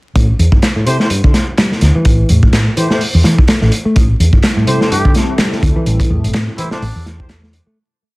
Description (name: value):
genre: breakbeat, breaks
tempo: 126 BPM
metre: 4/4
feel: swing 57% on 16ths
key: A minor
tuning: A4 = 438 Hz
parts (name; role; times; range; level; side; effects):
- picked electric bass; riff; 0.2-7.8 s; G2 to A3; -17 LUFS; equal; tube saturation, low-pass filter, digital delay
- hollow-body short-scale fingered electric bass; bass; 0.2-7.6 s; G1 to E2; -12 LUFS; equal; none
- crunchy breakbeat drum kit; drums; 0.2-7.7 s; hi-hat, kick drum, snare drum; -13 LUFS; equal; none
- electronic handclaps; drums; 0.6-7.4 s; none; -23 LUFS; equal; none
- mellow brass ensemble; stabs; 0.9-7.3 s; A3 to C5; -20 LUFS; left 1 dB; vintage 12-bit sampler grit, digital delay
- dark analog pad; sustained chords; 4.4-7.7 s; G3 to A4; -22 LUFS; equal; chorus, sidechain pumping
- trumpet with cup mute; melody; 4.9-7.1 s; D4 to G4; -23 LUFS; equal; AM radio sound, digital delay
room: light reverb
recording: dense, heavily limited modern master, vinyl crackle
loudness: -10 LUFS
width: side -23 dB against mid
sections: 0.2-7.8 groove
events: filter sweep on picked electric bass 0.2-7.8; fade-out 5.2-7.8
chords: 0.2 Am7